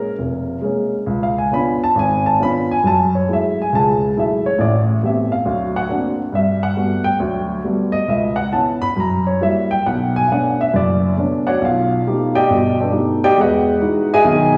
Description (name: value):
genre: solo jazz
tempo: 137 BPM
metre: 4/4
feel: swing 67% on 8ths, rubato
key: unclear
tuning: A4 = 440 Hz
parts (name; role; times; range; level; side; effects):
- dark baby grand piano; solo; 0.0-14.6 s; F1 to Cb6; -17 LUFS; equal; none
room: wet recital hall reverb, RT60 1.6 s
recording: recorded in a church or concert hall, studio reverb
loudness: -17 LUFS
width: mono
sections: 0.0-2.8 A section; 2.8-14.6 A section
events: grand piano solo 0.0-14.6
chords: 0.0 Bbm7; 1.1 Db7b9; 2.8 F#m9; 4.6 Am9; 5.5 Daug7; 6.3 Gmaj9; 8.1 C#m7; 9.0 F#7b9; 9.9 Bm9; 11.6 B7alt; 13.4 Emaj9